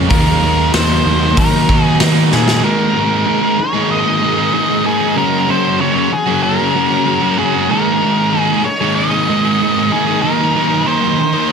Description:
rock, shoegaze and dream pop; 95 BPM; 4/4; straight; A4 = 444 Hz
soft additive organ-like pad; sustained chords; 0.0-11.5 s; Db4 to Eb6; -26 LUFS; left 1 dB; ensemble chorus, built-in reverb
overdriven electric guitar; riff; 0.0-11.5 s; Eb3 to Bb4; -16 LUFS; right 11 dB; reverse reverb
thick fuzz guitar; riff; 0.0-11.5 s; Gb2 to Eb4; -19 LUFS; left 11 dB; distortion, wide subtle chorus
fuzz picked electric bass; bass; 0.0-2.6 s; Eb2 to Eb3; -16 LUFS; equal; overdrive
octave-fuzz lead guitar; melody; 0.1-11.5 s; Ab4 to Eb5; -17 LUFS; left 2 dB; distortion, digital delay
raw garage drum kit; drums; 0.1-2.6 s; hi-hat, kick drum, snare drum; -17 LUFS; equal
light reverb, small room ambience; -11 LUFS; side -6 dB against mid
0.0-2.6 A section; 2.6-11.5 B section
drum fill 2.3-2.6
0.1 Ebm; 2.6 Absus2; 5.2 Gbadd9; 7.7 Absus2; 10.2 Ebm
| 0.11 0.74 1.37 2.00 | 2.64 3.27 3.90 4.54 | 5.17 5.80 6.44 7.07 | 7.70 8.34 8.97 9.60 | 10.23 10.87 11.50

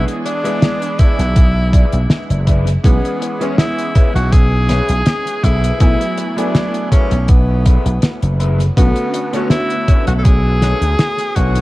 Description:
vaporwave; 81 BPM; 4/4; swing 54% on 16ths; B dorian; A4 = 440 Hz
bright tenor saxophone; melody; 0.0-11.6 s; B3 to A4; -21 LUFS; equal; tape echo
clear electric grand piano; accompaniment; 0.0-11.6 s; D3 to G#5; -23 LUFS; equal; ensemble chorus, tape echo
damped 70s drum kit; drums; 0.1-11.6 s; hi-hat, snare drum; -18 LUFS; equal; tape echo
electric guitar through a small old amp; riff; 0.3-11.6 s; D4 to D5; -28 LUFS; left 4 dB; analog chorus, vintage 12-bit sampler grit, tape echo
electronic kick drum; drums; 1.0-11.5 s; -12 LUFS; equal
vintage slap bass; bass; 1.2-11.6 s; F#1 to D2; -15 LUFS; equal; tube saturation
small room reverb; echo-heavy mix, cassette tape; -12 LUFS; side -18 dB against mid
0.0-11.6 A section
0.0 E7; 2.8 C#m7/B; 5.4 F#m11/B; 8.8 Bm9
0.62 1.36 2.10 | 2.84 3.58 4.33 5.07 | 5.81 6.55 7.29 8.03 | 8.77 9.51 10.25 10.99

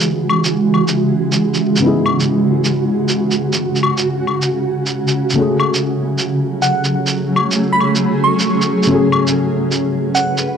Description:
future garage; 136 BPM; 4/4; swing 66% on 16ths; C# minor; A4 = 440 Hz
felt-muted upright piano; accompaniment; 0.0-10.6 s; C#3 to G#4; -20 LUFS; left 3 dB; tape echo
granular cloud pad; sustained chords; 0.0-10.6 s; C#3 to B4; -16 LUFS; right 1 dB; built-in reverb
shaker and claves; drums; 0.0-10.4 s; -18 LUFS; left 1 dB
flickering grainy texture; texture; 0.0-10.6 s; F#4; -24 LUFS; right 5 dB; built-in reverb
bell-like FM electric piano; melody; 6.6-10.4 s; F#5 to C#6; -19 LUFS; right 2 dB; chorus, phaser, tape echo
light reverb, digital ambience; dry, gritty hardware recording; -13 LUFS; side -7 dB against mid
0.0-10.6 A section
0.0 C#m7; 5.4 F#madd9/C#
| 0.08 0.52 0.96 1.40 | 1.84 2.28 2.73 3.17 | 3.61 4.05 4.49 4.93 | 5.37 5.81 6.25 6.70 | 7.14 7.58 8.02 8.46 | 8.90 9.34 9.78 10.22

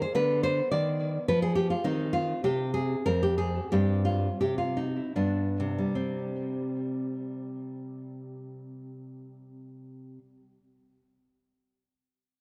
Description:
classical, baroque-style dance for nylon-string guitar; 73-108 BPM; 3/4; rubato; C minor; A4 = 440 Hz
nylon-string guitar; solo; 0.0-10.5 s; F2 to D5; -30 LUFS; equal; tape echo
light reverb; close, detailed microphones; -29 LUFS; mono
0.0-5.9 A section; 5.9-10.7 B section
slowing down 1.0-5.9
0.2 Dm6; 1.9 Cm/Eb; 3.1 Fm; 3.7 C5/G; 5.1 G; 5.9 C5
| 0.17 0.73 1.29 | 1.86 2.45 3.07 | 3.71 4.40 5.14 | 5.95 6.75 7.55 | 8.34 9.14 9.93

